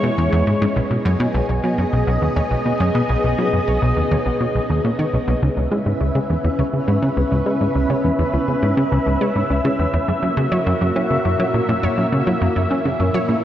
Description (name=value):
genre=ambient, sequencer-driven space music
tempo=103 BPM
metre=4/4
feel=straight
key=C# dorian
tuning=A4 = 439 Hz
part: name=string machine, full ensemble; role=sustained chords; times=0.0-13.4 s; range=G#3 to E5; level=-20 LUFS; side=equal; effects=ensemble chorus
part: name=wide unison pluck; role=arpeggios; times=0.0-13.4 s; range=A#3 to C#5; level=-29 LUFS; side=right 1 dB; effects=auto-pan, vintage 12-bit sampler grit, analog delay
part: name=plucky analog bass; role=riff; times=0.0-13.4 s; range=B1 to C#4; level=-19 LUFS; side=equal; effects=analog delay
room=wet lush hall reverb, RT60 2.9 s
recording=worn, warbling old tape, cassette tape, warbly pitch drift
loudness=-16 LUFS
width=side -11 dB against mid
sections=0.0-13.4 A section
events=fade-in on synth arpeggio sound 0.0-13.4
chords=0.0 E; 0.8 B6; 5.4 C#m7; 10.1 F#7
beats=0.18 | 0.76 1.35 1.93 2.51 | 3.09 3.68 4.26 4.84 | 5.42 6.01 6.59 7.17 | 7.75 8.34 8.92 9.50 | 10.08 10.67 11.25 11.83 | 12.41 13.00